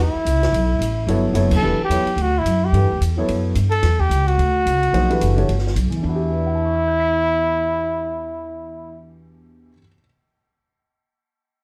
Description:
modal jazz; 218 BPM; 4/4; swing 59% on 8ths; E dorian; A4 = 438 Hz
mellow trumpet; melody; 0.0-9.0 s; E4 to A4; -23 LUFS; equal
upright bass; bass; 0.0-9.7 s; E1 to G2; -22 LUFS; equal
compact cocktail drum kit; drums; 0.3-6.0 s; crash cymbal, hi-hat, kick drum, ride cymbal, snare drum; -32 LUFS; equal
warm upright piano; accompaniment; 1.1-10.0 s; E2 to B6; -26 LUFS; equal
moderate studio reverb, RT60 0.6 s; heard from further back in the room; -19 LUFS; mono
0.0-1.6 A section; 1.6-6.0 B section; 6.0-8.2 C section
band accent 1.5
0.0 Emadd9; 1.6 Em9

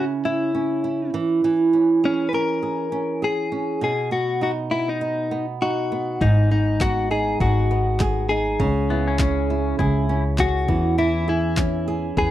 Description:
acoustic pop; 101 BPM; 4/4; swing 60% on 16ths; G# minor; A4 = 442 Hz
direct-recorded clean electric guitar; melody; 0.0-12.3 s; C#4 to B4; -24 LUFS; left 3 dB; slapback echo
flamenco guitar; accompaniment; 0.0-12.3 s; G#2 to B4; -23 LUFS; right 4 dB
upright bass; bass; 6.2-12.3 s; G#1 to E2; -22 LUFS; left 1 dB
punchy analog drum machine; drums; 6.2-12.3 s; handclaps, kick drum; -24 LUFS; left 1 dB; overdrive
pedal steel guitar; second line; 8.9-10.2 s; B3 to E4; -29 LUFS; left 5 dB; slapback echo
little or no reverb; dry, close 1970s-style studio recording; -19 LUFS; side -13 dB against mid
0.0-6.2 A section; 6.2-12.3 B section
0.0 C#m; 1.1 E6; 3.8 B; 6.2 G#m; 8.6 C#m; 10.7 E6

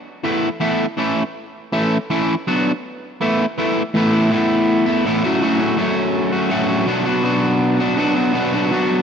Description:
rock; 163 BPM; 4/4; straight; A major; A4 = 441 Hz
fuzz guitar; solo; 0.2-9.0 s; A2 to F#4; -16 LUFS; equal; distortion
light reverb, digital ambience; rough home demo mix; -16 LUFS; side -7 dB against mid
0.0-3.9 A section; 3.9-9.0 B section
0.2 Esus4; 1.0 A; 2.5 Bm; 3.2 Esus4; 3.9 Asus2; 5.2 F#m/A; 6.9 Bm

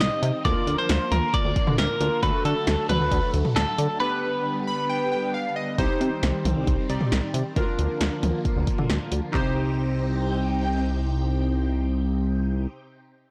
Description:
synth-pop; 135 BPM; 4/4; straight; C minor; A4 = 441 Hz
twelve-string electric guitar; melody; 0.0-5.3 s; A4 to Eb5; -28 LUFS; equal; warbly pitch drift, tape echo
warm analog keys; accompaniment; 0.0-12.7 s; A3 to B5; -33 LUFS; equal; chorus
phased string machine; sustained chords; 0.0-12.7 s; C3 to G5; -34 LUFS; equal; ensemble chorus, phaser
chorused synth bass; bass; 0.0-12.7 s; C2 to D3; -27 LUFS; equal
deep house drum kit; drums; 0.0-9.4 s; handclaps, hi-hat, kick drum, snare drum, toms; -28 LUFS; equal
moderate plate reverb, RT60 1.0 s; blown-out, overdriven recording, overdrive; -24 LUFS; mono
0.0-5.8 A section; 5.8-9.3 B section; 9.3-12.9 C section
break 4.0-5.8; synth keys fill 4.5-5.8
0.5 Bb/D; 2.2 D; 4.0 G; 5.8 Cm; 7.6 Bb/D; 9.3 Cm

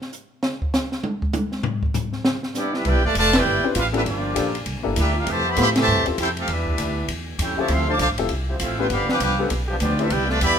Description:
jazz, big band swing; 198 BPM; 4/4; swing 62% on 8ths; A4 = 440 Hz
open jazz drum kit; drums; 0.0-10.5 s; hi-hat, kick drum, ride cymbal, snare drum, toms; -26 LUFS; left 1 dB
warm trombone section; second line; 2.5-10.6 s; C3 to G4; -27 LUFS; right 3 dB
clear trumpet section; melody; 2.6-10.6 s; Bb3 to D6; -22 LUFS; equal
upright bass; bass; 2.8-10.6 s; F1 to A2; -24 LUFS; equal
warm trombone section; sustained chords; 2.9-9.8 s; E3 to B4; -32 LUFS; left 1 dB
warm baby grand piano; accompaniment; 3.6-10.1 s; Bb3 to B4; -27 LUFS; left 6 dB
moderate large studio reverb, RT60 1.4 s; minimal, uncompressed stereo recording; -19 LUFS; side -8 dB against mid
0.0-2.8 A section; 2.8-10.6 B section
drum solo 0.0-2.8; band accent 3.3, 5.7
0.4 G; 2.8 Cmaj9; 4.1 Gm7; 4.7 C13; 5.3 Fmaj9; 6.5 Em7; 7.1 A7b13; 7.7 Dm11; 8.9 G7

